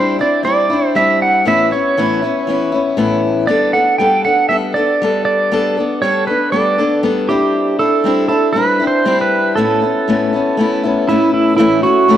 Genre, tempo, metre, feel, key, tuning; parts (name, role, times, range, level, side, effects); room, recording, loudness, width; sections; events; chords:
rock; 118 BPM; 4/4; straight; A mixolydian; A4 = 440 Hz
pedal steel guitar; melody; 0.0-12.2 s; E4 to G5; -14 LUFS; right 3 dB
picked old ladder-braced acoustic guitar; accompaniment; 0.0-12.2 s; A2 to A4; -15 LUFS; left 3 dB
moderate plate reverb, RT60 3.5 s; dark, warm production; -12 LUFS; side -11 dB against mid
0.0-11.6 A section
0.0 Cadd9/G; 1.5 Aadd9; 3.5 Gadd9; 7.3 Cadd9/G; 9.6 Aadd9; 11.6 A